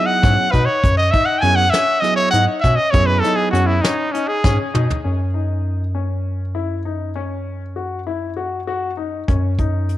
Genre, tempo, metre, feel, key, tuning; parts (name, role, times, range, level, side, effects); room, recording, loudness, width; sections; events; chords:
progressive instrumental, band music in an uneven meter; 199 BPM (eighths); 7/8; straight; A4 = 440 Hz
bright trumpet; melody; 0.0-4.6 s; C#4 to G#5; -17 LUFS; equal; cassette tape, tape echo
bell-like tine electric piano; accompaniment; 0.0-3.8 s; F#3 to G#4; -23 LUFS; right 8 dB
clear grand piano; arpeggios; 0.0-10.0 s; C#4 to F#4; -25 LUFS; left 7 dB
rubbery square bass; bass; 0.2-10.0 s; F#2 to B2; -20 LUFS; equal
soft brush drum kit; drums; 0.2-5.0, 9.3-10.0 s; hi-hat, kick drum, snare drum, toms; -19 LUFS; equal; cassette tape
moderate spring reverb, RT60 1.6 s, studio reverb; home recording on cassette; -16 LUFS; side -14 dB against mid
0.0-5.0 A section; 5.0-10.0 B section
trumpet solo 0.0-5.0; drum fill 4.4-5.0
0.0 F#sus2; 5.0 F#5